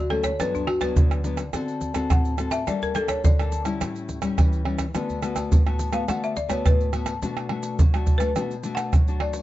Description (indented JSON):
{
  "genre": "samba and choro",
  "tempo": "105 BPM",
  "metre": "4/4",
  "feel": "straight",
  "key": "D major",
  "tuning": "A4 = 439 Hz",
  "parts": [
    { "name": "folk marimba with hard mallets", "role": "melody", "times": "0.0-9.4 s", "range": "D4 to F#5", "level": "-27 LUFS", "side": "left 2 dB", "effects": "none" },
    { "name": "nylon-string guitar", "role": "accompaniment", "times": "0.0-9.4 s", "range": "G2 to A4", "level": "-28 LUFS", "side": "left 4 dB", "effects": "none" },
    { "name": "pandeiro, tamborim, maracas and surdo", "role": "percussion", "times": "0.1-9.4 s", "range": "none", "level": "-22 LUFS", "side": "right 1 dB", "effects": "none" }
  ],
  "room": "light reverb",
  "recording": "dark, warm production, nothing above 7.8 kHz",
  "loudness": "-21 LUFS",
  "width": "side -15 dB against mid",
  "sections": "0.0-7.2 A section; 7.2-9.4 B section",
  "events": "marimba solo 0.0-7.2",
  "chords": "0.4 Gmaj7; 1.5 D7; 2.7 Gmadd9; 3.8 A7; 4.9 D6; 7.2 Bm7"
}